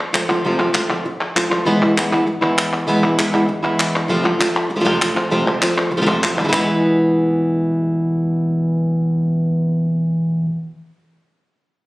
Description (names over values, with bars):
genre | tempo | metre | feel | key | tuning
flamenco | 197 BPM | 4/4 | straight | unclear | A4 = 440 Hz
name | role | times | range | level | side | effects
palmas hand claps | percussion | 0.0-6.6 s | none | -20 LUFS | equal | none
flamenco guitar | melody | 0.1-10.5 s | E2 to F4 | -16 LUFS | equal | none
room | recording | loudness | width
light reverb | recorded on a phone in the room, studio reverb | -15 LUFS | side -20 dB against mid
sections
0.0-1.7 A section; 1.7-6.5 A section; 6.5-9.0 B section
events
none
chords
0.0 F; 1.7 E; 4.1 F; 6.5 E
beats
0.14 | 0.45 0.75 1.06 1.36 | 1.67 1.97 2.27 2.58 | 2.88 3.19 3.49 3.80 | 4.10 4.40 4.71 5.01 | 5.32 5.62 5.92 6.23 | 6.53 6.83 7.14 7.44 | 7.75 8.05 8.35 8.65